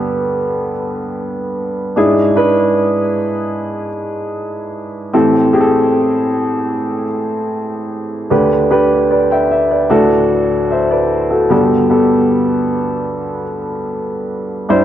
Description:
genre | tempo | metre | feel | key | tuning
pop | 76 BPM | 4/4 | straight | G major | A4 = 437 Hz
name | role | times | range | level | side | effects
warm baby grand piano | solo | 0.0-14.8 s | D2 to G5 | -13 LUFS | equal | ping-pong delay
room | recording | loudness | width
moderate scoring stage reverb, RT60 1.7 s | worn, warbling old tape, cassette tape, warbly pitch drift | -13 LUFS | side -11 dB against mid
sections
0.0-14.8 A section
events
none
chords
0.0 Gadd9; 2.0 E7/G#; 5.1 Am7; 8.3 G/D; 9.9 D; 11.5 Gadd9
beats
0.37 1.17 | 1.97 2.76 3.55 4.35 | 5.14 5.93 6.72 7.51 | 8.31 9.10 9.90 10.71 | 11.51 12.31 13.11 13.91 | 14.70

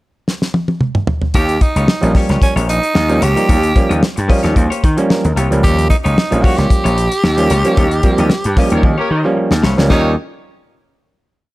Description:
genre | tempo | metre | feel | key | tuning
funk | 112 BPM | 4/4 | straight | Eb mixolydian | A4 = 439 Hz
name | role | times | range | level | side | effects
damped 70s drum kit | drums | 0.3-10.0 s | hi-hat, kick drum, snare drum, toms | -15 LUFS | equal | none
raspy tenor saxophone | melody | 1.3-10.1 s | Db4 to G4 | -18 LUFS | right 2 dB | none
semi-hollow electric guitar | accompaniment | 1.3-10.1 s | Bb3 to Eb5 | -24 LUFS | left 4 dB | none
gritty slap bass | bass | 1.3-10.1 s | Bb1 to Eb3 | -15 LUFS | equal | overdrive
overdriven clav | stabs | 2.0-10.2 s | F3 to Db5 | -18 LUFS | right 1 dB | none
clear horn section | second line | 8.7-10.1 s | Bb3 to Db5 | -23 LUFS | left 1 dB | none
room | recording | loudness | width
small room ambience | none | -11 LUFS | side -18 dB against mid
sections
0.0-1.3 pickup bar; 1.3-9.9 groove; 9.9-11.5 final chord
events
drum fill 0.3-1.3, 8.8-9.9; clav fill 4.0-5.6; band accent 7.8-9.9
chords
0.0 N.C.; 1.3 Eb9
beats
0.28 0.81 | 1.35 1.89 2.42 2.96 | 3.50 4.03 4.57 5.11 | 5.64 6.18 6.71 7.24 | 7.78 8.31 8.84 9.37 | 9.90

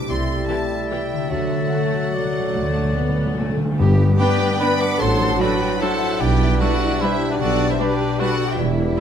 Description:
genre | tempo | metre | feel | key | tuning
classical, orchestral ballroom waltz | 148 BPM | 3/4 | uneven beats, rubato | G major | A4 = 440 Hz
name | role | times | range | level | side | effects
rich studio violin section | melody | 0.0-9.0 s | D5 to D6 | -30 LUFS | left 3 dB | none
mellow clarinet | second line | 0.0-9.0 s | D4 to F#4 | -30 LUFS | left 3 dB | none
concert harp | arpeggios | 0.0-9.0 s | E2 to D5 | -26 LUFS | left 10 dB | none
mellow concert flute | second line | 0.1-9.0 s | F#4 to A6 | -31 LUFS | left 2 dB | none
warm cor anglais | second line | 0.1-9.0 s | D4 to E5 | -28 LUFS | right 4 dB | none
mellow bassoon | accompaniment | 0.1-9.0 s | F#3 to B3 | -28 LUFS | right 2 dB | none
mellow French horn section | sustained chords | 0.1-8.3 s | F#3 to A4 | -33 LUFS | left 5 dB | none
rich studio cello section | bass | 0.1-9.0 s | C3 to B4 | -27 LUFS | right 1 dB | none
warm studio double bass section | bass | 0.1-8.9 s | E1 to G2 | -25 LUFS | right 3 dB | none
rich studio violin section | second line | 0.5-8.6 s | F#4 to B5 | -29 LUFS | left 2 dB | none
rich studio viola section | accompaniment | 0.5-9.0 s | E3 to E4 | -29 LUFS | equal | none
timpani | percussion | 1.3-4.4 s | G2 to D3 | -23 LUFS | left 1 dB | none
mellow tuba | bass | 3.8-8.9 s | E1 to B1 | -27 LUFS | right 4 dB | none
dark trumpet section | stabs | 4.2-9.0 s | A4 to B4 | -30 LUFS | equal | none
room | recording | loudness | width
moderate concert hall reverb, RT60 2.3 s | close, detailed microphones | -17 LUFS | side -8 dB against mid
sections
0.0-3.8 A section; 3.8-9.0 B section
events
timpani fill 1.3-3.8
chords
0.1 Am7/C; 1.3 D; 3.8 G; 5.0 D7/A; 6.2 G/B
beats
| 0.10 0.49 0.91 | 1.31 1.73 2.15 | 2.56 2.97 3.40 | 3.79 4.19 4.61 | 5.00 5.40 5.81 | 6.20 6.60 7.01 | 7.40 7.79 8.20 | 8.59 8.97

